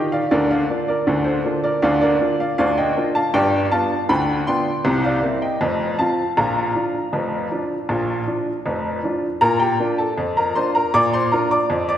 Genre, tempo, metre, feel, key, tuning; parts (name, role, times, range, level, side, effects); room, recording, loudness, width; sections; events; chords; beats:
ragtime piano; 79 BPM; 2/4; straight; Bb major; A4 = 440 Hz
bright upright piano; solo; 0.0-12.0 s; F1 to D6; -17 LUFS; equal
wet concert hall reverb, RT60 1.7 s; recorded in a church or concert hall; -17 LUFS; side -10 dB against mid
0.0-9.4 A section; 9.4-12.0 B section
0.3 Bb/D; 3.3 G7; 4.9 C7; 5.6 F; 6.4 Bb
| 0.32 1.08 | 1.83 2.59 | 3.34 4.10 | 4.85 5.61 | 6.37 7.13 | 7.90 8.66 | 9.43 10.19 | 10.95 11.71